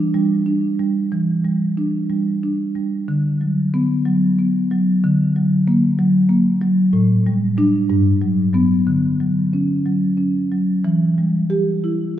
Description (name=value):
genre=classical, contemporary piece for solo marimba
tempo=61 BPM (dotted quarters)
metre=6/8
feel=rubato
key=unclear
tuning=A4 = 444 Hz
part: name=marimba with soft mallets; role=solo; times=0.0-12.2 s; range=G2 to G4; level=-16 LUFS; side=equal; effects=none
room=wet church reverb, RT60 2.5 s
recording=recorded in a church or concert hall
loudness=-16 LUFS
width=side -11 dB against mid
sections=0.0-10.9 A section; 10.9-12.2 B section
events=none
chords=0.0 Em7; 3.1 D6; 5.0 F#/D; 6.9 A7sus4; 7.9 Gmaj7; 8.9 Dmaj7; 10.9 Em